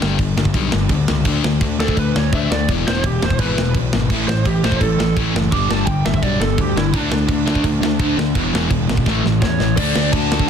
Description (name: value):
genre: punk rock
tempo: 169 BPM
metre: 4/4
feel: straight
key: unclear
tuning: A4 = 440 Hz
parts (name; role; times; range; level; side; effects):
- sludgy distorted guitar; riff; 0.0-10.5 s; E2 to D4; -20 LUFS; left 8 dB; overdrive
- fuzz picked electric bass; bass; 0.0-10.4 s; E1 to E2; -22 LUFS; right 1 dB; overdrive
- tight metal drum kit; drums; 0.0-10.5 s; crash cymbal, kick drum, snare drum; -20 LUFS; right 1 dB; soft clipping on kick
- lead guitar through a small cranked amp; melody; 1.8-10.5 s; D4 to D6; -24 LUFS; right 3 dB; overdrive, tape echo
- sludgy distorted guitar; riff; 4.1-10.5 s; E2 to D4; -23 LUFS; right 15 dB; overdrive
room: studio ambience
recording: dense, heavily limited modern master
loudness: -15 LUFS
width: side -8 dB against mid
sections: 0.0-9.8 A section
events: lead electric guitar solo 0.0-9.8; drum fill 9.1-9.8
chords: 0.0 G5; 1.3 D5; 2.7 E; 4.1 A5; 5.5 G5; 6.9 D5; 8.4 E; 9.1 A; 9.8 D5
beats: 0.19 0.54 0.90 | 1.25 1.61 1.96 2.32 | 2.67 3.03 3.38 3.74 | 4.09 4.45 4.80 5.16 | 5.51 5.87 6.22 6.58 | 6.93 7.29 7.64 8.00 | 8.35 8.71 9.06 9.41 | 9.77 10.12 10.48